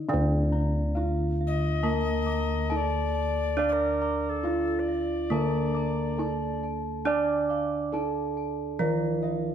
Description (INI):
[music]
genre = gamelan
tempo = 69 BPM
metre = 4/4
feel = straight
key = D pelog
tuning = A4 = 440 Hz
[part]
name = gamelan-type bronze metallophone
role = melody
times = 0.0-9.5 s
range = D4 to D5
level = -31 LUFS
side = right 1 dB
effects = none
[part]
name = gamelan-type bronze metallophone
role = accompaniment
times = 0.0-9.5 s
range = D3 to D4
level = -32 LUFS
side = right 4 dB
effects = none
[part]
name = gamelan-type bossed gongs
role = bass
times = 0.0-9.5 s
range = D2 to D5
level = -29 LUFS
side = equal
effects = none
[part]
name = gamelan-type bossed gongs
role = arpeggios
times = 0.1-9.5 s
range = D5 to D6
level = -38 LUFS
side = left 4 dB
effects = none
[part]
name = gamelan-type bronze metallophone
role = arpeggios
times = 0.1-9.5 s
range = D5 to D6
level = -37 LUFS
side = right 2 dB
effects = none
[part]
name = alto recorder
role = second line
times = 1.5-6.7 s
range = A4-27c to Eb5+22c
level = -33 LUFS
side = left 6 dB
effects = none
[sound]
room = moderate recital hall reverb, RT60 1.3 s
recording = none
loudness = -25 LUFS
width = side -9 dB against mid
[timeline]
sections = 0.1-9.5 A section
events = none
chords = none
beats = | 0.10 0.97 1.84 2.71 | 3.58 4.45 5.32 6.19 | 7.06 7.93 8.81